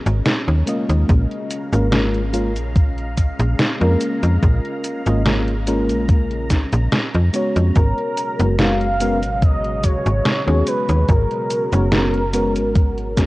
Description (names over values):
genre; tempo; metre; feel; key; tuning
vaporwave; 72 BPM; 4/4; swing 53% on 16ths; G# dorian; A4 = 441 Hz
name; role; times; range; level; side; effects
soft string machine; sustained chords; 0.0-13.3 s; B2 to A#5; -29 LUFS; equal; ensemble chorus
slap-like FM bass; bass; 0.1-13.3 s; F#1 to E#2; -19 LUFS; equal; transformer saturation
detuned 8-bit digital drum machine; drums; 0.1-13.3 s; cabasa, hi-hat, snare drum; -21 LUFS; equal; none
mellow FM electric piano; accompaniment; 0.7-13.3 s; G#3 to D#5; -22 LUFS; equal; analog chorus, cassette tape, tape echo
electronic kick drum; drums; 1.1-13.3 s; none; -15 LUFS; equal; none
warm velvety synth lead; melody; 7.8-13.3 s; A#4 to E#5; -22 LUFS; equal; chorus, tape echo
room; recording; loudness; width
little or no reverb; worn, warbling old tape, cassette tape, warbly pitch drift; -16 LUFS; side -19 dB against mid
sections
0.0-13.3 A section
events
none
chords
0.0 G#m11